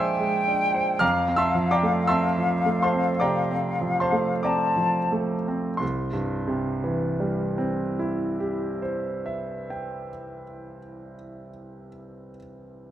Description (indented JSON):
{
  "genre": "classical, impressionist duo for flute and grand piano",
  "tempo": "41-58 BPM",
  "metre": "4/4",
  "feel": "rubato",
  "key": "C mixolydian",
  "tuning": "A4 = 442 Hz",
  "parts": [
    { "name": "concert flute", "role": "melody", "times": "0.0-5.1 s", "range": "F5 to A5", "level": "-25 LUFS", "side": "left 2 dB", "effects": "none" },
    { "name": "bright concert grand piano", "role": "accompaniment", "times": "0.0-12.9 s", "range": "C2 to F6", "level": "-25 LUFS", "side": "right 1 dB", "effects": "none" }
  ],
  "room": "moderate recital hall reverb, RT60 1.5 s",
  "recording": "close, detailed microphones",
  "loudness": "-22 LUFS",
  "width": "side -11 dB against mid",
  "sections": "0.0-5.8 A section; 5.8-10.9 B section",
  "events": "slowing down 0.0-5.8",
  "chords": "0.0 Bb9; 1.0 Fmaj7; 5.8 C",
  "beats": "| 1.01 2.09 3.22 4.44 | 5.81 7.08 8.36 9.64"
}